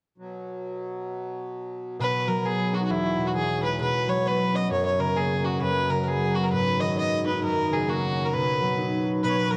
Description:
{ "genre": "celtic folk, Celtic polka", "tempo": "133 BPM", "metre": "2/4", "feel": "swing 62% on 8ths", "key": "B major", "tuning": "A4 = 440 Hz", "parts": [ { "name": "accordion", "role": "drone", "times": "0.2-9.6 s", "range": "B2 to F#3", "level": "-37 LUFS", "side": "equal", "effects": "light tremolo tuning" }, { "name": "warm fiddle", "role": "melody", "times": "2.0-9.6 s", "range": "E4 to D#5", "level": "-28 LUFS", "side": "equal", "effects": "none" }, { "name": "concert harp", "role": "accompaniment", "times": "2.0-9.6 s", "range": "E2 to F#4", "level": "-28 LUFS", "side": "equal", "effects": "none" }, { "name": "warm harmonica", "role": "second line", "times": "9.2-9.6 s", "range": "A#4 to C#5", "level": "-34 LUFS", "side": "equal", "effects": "none" } ], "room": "wet plate reverb, RT60 3.1 s", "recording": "dreamy mix soaked in reverb, cassette tape", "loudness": "-25 LUFS", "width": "mono", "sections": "0.2-2.0 A section; 2.0-9.2 B section", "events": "none", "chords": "0.2 B5; 2.0 B; 2.9 E; 3.8 Bsus2; 4.7 F#; 6.5 G#m7; 7.4 F#; 8.3 B" }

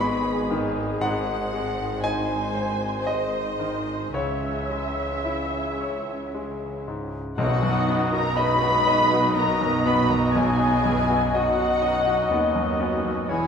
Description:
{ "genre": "cinematic, emotional film score for orchestra", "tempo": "54-63 BPM", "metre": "3/4", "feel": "rubato", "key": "B major", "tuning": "A4 = 440 Hz", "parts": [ { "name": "muted symphonic violin section", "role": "melody", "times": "0.0-13.5 s", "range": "G#4 to B5", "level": "-29 LUFS", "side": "left 2 dB", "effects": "none" }, { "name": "muted symphonic violin section", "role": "second line", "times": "0.0-13.5 s", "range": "F#4 to B5", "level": "-33 LUFS", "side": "equal", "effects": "none" }, { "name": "bright concert grand piano", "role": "accompaniment", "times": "0.0-13.5 s", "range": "B1 to D#6", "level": "-28 LUFS", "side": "left 2 dB", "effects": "none" }, { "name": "muted symphonic viola section", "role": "accompaniment", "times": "0.0-13.5 s", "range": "F#3 to E5", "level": "-31 LUFS", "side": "right 2 dB", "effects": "none" }, { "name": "warm French horn section", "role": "sustained chords", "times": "0.0-13.5 s", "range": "D#3 to D#5", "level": "-30 LUFS", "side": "left 2 dB", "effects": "none" }, { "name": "muted symphonic cello section", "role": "bass", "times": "0.0-13.5 s", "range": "D#2 to C#3", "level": "-30 LUFS", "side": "right 2 dB", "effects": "none" }, { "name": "muted symphonic double bass section", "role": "bass", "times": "0.0-13.5 s", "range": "E1 to D#2", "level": "-33 LUFS", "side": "right 2 dB", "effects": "none" }, { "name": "mellow clarinet", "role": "second line", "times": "7.4-13.5 s", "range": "E4 to F#4", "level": "-33 LUFS", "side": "left 1 dB", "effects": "none" }, { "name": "mellow hollow concert flute", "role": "second line", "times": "7.4-13.5 s", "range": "F#5 to B5", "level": "-28 LUFS", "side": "left 2 dB", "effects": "none" }, { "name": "warm oboe", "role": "second line", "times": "7.4-13.5 s", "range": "C#5 to D#5", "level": "-30 LUFS", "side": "right 1 dB", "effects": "none" }, { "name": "timpani", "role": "percussion", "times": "7.4-8.8 s", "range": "B2", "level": "-29 LUFS", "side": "equal", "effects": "none" } ], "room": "wet recital hall reverb, RT60 1.7 s", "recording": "minimal, uncompressed stereo recording", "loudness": "-21 LUFS", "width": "side -6 dB against mid", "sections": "0.0-7.4 A section; 7.4-13.5 B section", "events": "none", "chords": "0.0 G#m; 1.0 G#7; 4.1 C#m; 7.4 B" }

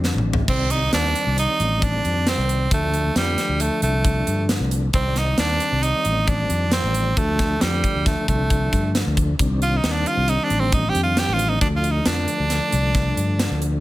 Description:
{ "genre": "progressive instrumental, band music in an uneven meter", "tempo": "135 BPM", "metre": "5/4", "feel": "straight", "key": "C dorian", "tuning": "A4 = 440 Hz", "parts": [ { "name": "tonewheel organ", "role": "accompaniment", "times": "0.0-13.8 s", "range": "D3 to D5", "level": "-27 LUFS", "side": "left 2 dB", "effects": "chorus vibrato, fast rotary speaker" }, { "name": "fretless electric bass", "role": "bass", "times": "0.0-13.8 s", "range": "A1 to G2", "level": "-22 LUFS", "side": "equal", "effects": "none" }, { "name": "tight metal drum kit", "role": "drums", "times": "0.0-13.7 s", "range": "crash cymbal, hi-hat, kick drum, snare drum, toms", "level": "-24 LUFS", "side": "equal", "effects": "none" }, { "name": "raspy tenor saxophone", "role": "melody", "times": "0.5-13.6 s", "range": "G3 to G4", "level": "-23 LUFS", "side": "right 2 dB", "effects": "none" } ], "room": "light reverb", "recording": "none", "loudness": "-18 LUFS", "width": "side -16 dB against mid", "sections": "0.5-13.8 A section", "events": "drum fill 0.0-0.5", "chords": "0.5 Cmadd9; 2.7 Dm; 4.9 Cmadd9; 7.2 Dm; 9.4 Cmadd9; 11.6 Dm" }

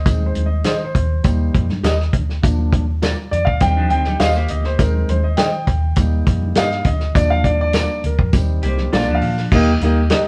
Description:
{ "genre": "uptempo 1960s-style soul", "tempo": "102 BPM", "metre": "4/4", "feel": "straight", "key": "Eb major", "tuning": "A4 = 444 Hz", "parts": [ { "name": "dark concert grand piano", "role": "accompaniment", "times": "0.0-10.3 s", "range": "Eb3 to G5", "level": "-23 LUFS", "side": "equal", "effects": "none" }, { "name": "vintage muted fingered electric bass", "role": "bass", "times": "0.0-10.3 s", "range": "Bb1 to Eb3", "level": "-22 LUFS", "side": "equal", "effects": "none" }, { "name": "warm soul drum kit", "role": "drums", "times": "0.1-10.2 s", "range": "crash cymbal, hi-hat, kick drum, snare drum", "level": "-21 LUFS", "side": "equal", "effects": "none" }, { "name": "tambourine", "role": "percussion", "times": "0.1-9.1 s", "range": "none", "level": "-43 LUFS", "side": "equal", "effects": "none" }, { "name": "congas", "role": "percussion", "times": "0.2-10.2 s", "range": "none", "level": "-34 LUFS", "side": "equal", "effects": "none" }, { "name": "electric guitar through a small old amp", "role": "stabs", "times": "0.6-10.2 s", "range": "F4 to Eb5", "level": "-25 LUFS", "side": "equal", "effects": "none" }, { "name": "clean electric guitar", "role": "riff", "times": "3.6-4.8, 8.6-9.5 s", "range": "Eb3 to G4", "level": "-27 LUFS", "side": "equal", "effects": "none" } ], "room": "moderate studio reverb, RT60 0.8 s", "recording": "band playing live in one room, cassette tape", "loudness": "-17 LUFS", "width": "mono", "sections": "0.0-9.5 A section", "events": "grand piano solo 0.0-9.5", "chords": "0.1 Ab/Eb; 1.2 Eb; 2.4 Bb/Eb; 3.6 Cm; 4.8 Ab/Eb; 6.0 Eb; 7.2 Bb/Eb; 8.3 Cm/Eb; 8.9 Bb; 9.5 Eb" }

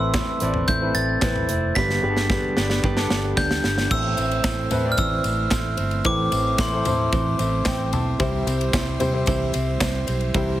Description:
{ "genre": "piano-driven pop", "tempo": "112 BPM", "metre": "4/4", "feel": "straight", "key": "A minor", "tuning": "A4 = 440 Hz", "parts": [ { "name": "glockenspiel with brass mallets", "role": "melody", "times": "0.0-7.4 s", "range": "C6 to B6", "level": "-26 LUFS", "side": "equal", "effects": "none" }, { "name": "clear grand piano", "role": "accompaniment", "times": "0.0-10.6 s", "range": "G2 to A5", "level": "-27 LUFS", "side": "left 2 dB", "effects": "none" }, { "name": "direct-recorded clean electric guitar", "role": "riff", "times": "0.0-10.6 s", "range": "A2 to C5", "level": "-28 LUFS", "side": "right 4 dB", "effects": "none" }, { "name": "vintage muted fingered electric bass", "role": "bass", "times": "0.0-10.6 s", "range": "F1 to C3", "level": "-26 LUFS", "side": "equal", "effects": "none" }, { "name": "modern studio drum kit", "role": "drums", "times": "0.1-10.5 s", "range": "crash cymbal, handclaps, hi-hat, kick drum, ride cymbal, snare drum, toms", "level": "-25 LUFS", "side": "equal", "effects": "none" }, { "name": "tambourine", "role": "percussion", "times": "4.2-10.2 s", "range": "none", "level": "-39 LUFS", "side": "left 5 dB", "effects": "none" } ], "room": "light reverb, studio reverb", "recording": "heavily compressed radio sound, multiband compression", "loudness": "-19 LUFS", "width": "side -14 dB against mid", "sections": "0.0-3.9 A section; 3.9-10.6 B section", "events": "drum fill 1.8-3.9; grand piano fill 7.1-8.2", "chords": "0.0 Amadd9; 1.8 G; 3.9 Am; 8.2 C" }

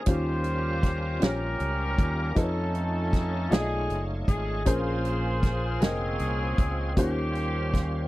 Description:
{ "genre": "slow gospel", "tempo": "52 BPM (dotted quarters)", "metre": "6/8", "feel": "straight", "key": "unclear", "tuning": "A4 = 440 Hz", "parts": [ { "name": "warm horn section", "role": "melody", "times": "0.0-8.1 s", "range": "Bb3 to C5", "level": "-32 LUFS", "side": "equal", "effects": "slapback echo" }, { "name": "dark upright piano", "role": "accompaniment", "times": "0.0-8.1 s", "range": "Bb2 to Eb5", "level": "-32 LUFS", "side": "left 1 dB", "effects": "none" }, { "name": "bright tonewheel organ", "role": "sustained chords", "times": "0.0-8.1 s", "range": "G3 to C#5", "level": "-37 LUFS", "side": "right 2 dB", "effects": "slow rotary speaker, overdrive, chorus vibrato" }, { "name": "fingered electric bass", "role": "bass", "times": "0.1-8.1 s", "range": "F1 to F2", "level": "-30 LUFS", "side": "equal", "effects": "none" }, { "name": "natural country drum kit", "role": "drums", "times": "0.1-7.9 s", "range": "hi-hat, kick drum, snare drum", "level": "-24 LUFS", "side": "equal", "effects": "none" } ], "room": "little or no reverb", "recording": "dry, close 1970s-style studio recording", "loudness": "-24 LUFS", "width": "side -17 dB against mid", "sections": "0.0-8.1 A section", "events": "none", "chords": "0.1 Eb13; 2.4 F7alt; 4.7 Bbm9; 7.0 Eb13" }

